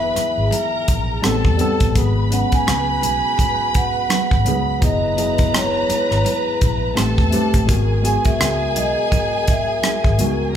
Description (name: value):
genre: lush 1970s-style soul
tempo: 84 BPM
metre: 4/4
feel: swing 58% on 16ths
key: G# minor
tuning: A4 = 440 Hz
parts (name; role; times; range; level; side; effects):
- vibraphone with soft mallets; melody; 0.0-10.2 s; B4 to G#5; -22 LUFS; right 1 dB; none
- warm studio violin section; second line; 0.0-10.5 s; G#4 to B5; -24 LUFS; equal; none
- tine electric piano; accompaniment; 0.0-10.6 s; F#3 to B4; -24 LUFS; left 2 dB; none
- mellow French horn section; sustained chords; 0.0-10.5 s; C3 to A#4; -32 LUFS; right 2 dB; none
- vintage muted fingered electric bass; bass; 0.0-10.6 s; F#1 to E2; -22 LUFS; equal; none
- tight funk drum kit; drums; 0.2-10.4 s; hi-hat, kick drum, rim click; -20 LUFS; equal; none
- congas; percussion; 0.2-10.4 s; none; -28 LUFS; right 5 dB; none
room: moderate large studio reverb, RT60 0.9 s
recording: band playing live in one room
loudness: -15 LUFS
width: side -9 dB against mid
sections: 0.0-10.6 A section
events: none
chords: 0.0 F#9sus4; 1.2 Am9; 2.0 G#m7; 4.8 F#9sus4; 7.0 Am9; 7.7 G#m9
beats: 0.53 1.24 | 1.96 2.68 3.39 4.11 | 4.83 5.54 6.26 6.98 | 7.69 8.41 9.12 9.84 | 10.56